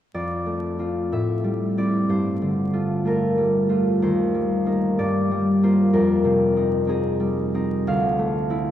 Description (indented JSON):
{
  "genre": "classical, solo harp piece",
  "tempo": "62 BPM (dotted quarters)",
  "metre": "6/8",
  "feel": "rubato",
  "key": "F mixolydian",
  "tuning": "A4 = 440 Hz",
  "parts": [
    { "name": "concert harp", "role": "solo", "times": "0.1-8.7 s", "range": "D2 to F5", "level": "-19 LUFS", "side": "equal", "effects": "none" }
  ],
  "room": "wet cathedral reverb, RT60 6.7 s",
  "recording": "vinyl crackle",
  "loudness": "-19 LUFS",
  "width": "side -11 dB against mid",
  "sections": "0.1-8.7 A section",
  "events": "none",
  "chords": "0.1 F6; 1.1 Am7; 2.1 Gm9; 4.0 Eb6; 5.0 Gm7; 5.9 Fm9; 7.9 Dm9"
}